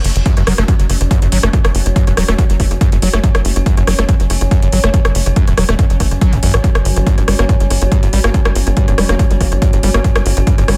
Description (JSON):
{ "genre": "driving peak-time techno", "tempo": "141 BPM", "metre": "4/4", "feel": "straight", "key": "F# minor", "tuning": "A4 = 440 Hz", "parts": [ { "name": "tight sequencer bass", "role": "bass", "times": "0.0-10.8 s", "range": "E1 to A1", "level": "-17 LUFS", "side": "equal", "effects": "sidechain pumping" }, { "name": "metallic inharmonic drone", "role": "drone", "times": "0.0-10.8 s", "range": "F#3 to C#4", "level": "-26 LUFS", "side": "equal", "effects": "chorus, built-in reverb, sidechain pumping" }, { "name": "techno drum kit", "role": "drums", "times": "0.0-10.8 s", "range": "hi-hat, rim click", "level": "-22 LUFS", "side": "equal", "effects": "sidechain pumping on toms, sidechain pumping on hats, sidechain pumping on cymbals, analog delay" }, { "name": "screaming distorted acid line", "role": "riff", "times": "0.3-10.7 s", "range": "F#2 to Bb3", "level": "-22 LUFS", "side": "equal", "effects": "distortion, subtle chorus, sidechain pumping, tape echo" }, { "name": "electronic kick drum", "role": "drums", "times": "0.3-10.6 s", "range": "none", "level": "-16 LUFS", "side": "equal", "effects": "none" } ], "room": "digital ambience", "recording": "echo-heavy mix", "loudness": "-13 LUFS", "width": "mono", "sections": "0.0-10.8 A section", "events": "none", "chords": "0.0 F#5; 6.6 N.C.", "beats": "0.26 0.68 1.11 | 1.53 1.96 2.38 2.81 | 3.24 3.66 4.09 4.51 | 4.94 5.36 5.79 6.21 | 6.64 7.07 7.49 7.92 | 8.34 8.77 9.19 9.62 | 10.04 10.47" }